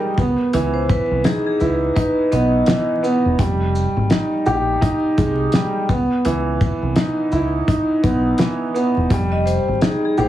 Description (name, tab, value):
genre	hip hop, boom-bap hip-hop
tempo	84 BPM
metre	4/4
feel	swing 60% on 16ths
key	unclear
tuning	A4 = 440 Hz
part	dark upright piano	accompaniment	0.0-10.3 s	Fb3 to G4	-19 LUFS	right 1 dB	cassette tape, high-pass filter, low-pass filter
part	deep dub fingered electric bass	bass	0.2-10.3 s	Fb1 to Db2	-21 LUFS	equal	none
part	cloth-damped thuddy drum kit	drums	0.2-10.3 s	hi-hat, kick drum, shaker, snare drum	-19 LUFS	equal	none
part	vibraphone with medium mallets	melody	0.7-3.0, 9.3-10.3 s	Ab4 to Eb5	-23 LUFS	left 1 dB	high-pass filter, low-pass filter, tape echo
room	light reverb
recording	heavily compressed radio sound, multiband compression, vinyl crackle, small room ambience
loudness	-16 LUFS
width	side -12 dB against mid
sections	0.0-10.3 A section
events	none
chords	0.2 Dbm9; 3.4 Fm9; 5.9 Dbm9; 9.1 Fm9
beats	| 0.53 1.25 1.96 2.67 | 3.39 4.10 4.82 5.53 | 6.25 6.96 7.67 8.39 | 9.10 9.82